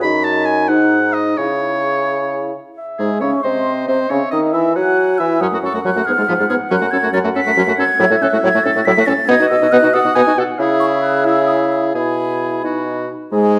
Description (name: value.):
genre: quick classical-period movement for wind quintet.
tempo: 85-94 BPM (dotted quarters).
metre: 6/8.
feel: rubato.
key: C# minor.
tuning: A4 = 442 Hz.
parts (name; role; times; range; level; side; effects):
mellow hollow concert flute; melody; 0.0-13.6 s; G#4 to B6; -22 LUFS; equal; none.
bright oboe; second line; 0.0-13.1 s; Cb4 to B5; -25 LUFS; equal; none.
clear French horn; accompaniment; 0.0-13.6 s; F3 to F#4; -21 LUFS; equal; none.
mellow clarinet; accompaniment; 0.0-13.6 s; D#4 to G#5; -24 LUFS; equal; none.
warm bassoon; bass; 0.0-13.6 s; F#2 to F#3; -21 LUFS; equal; none.
room: wet recital hall reverb, RT60 1.4 s.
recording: dark, warm production.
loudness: -16 LUFS.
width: mono.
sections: 0.0-2.8 A section; 2.8-13.3 B section.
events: none.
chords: 0.0 F#m69; 0.7 G#7; 1.4 C#m; 3.4 Cm; 4.1 C#m; 5.4 F#m; 6.1 Fm/Ab; 6.7 F#m; 8.0 F#m7/A; 9.3 B; 10.6 C#m; 11.9 E/B; 12.6 B.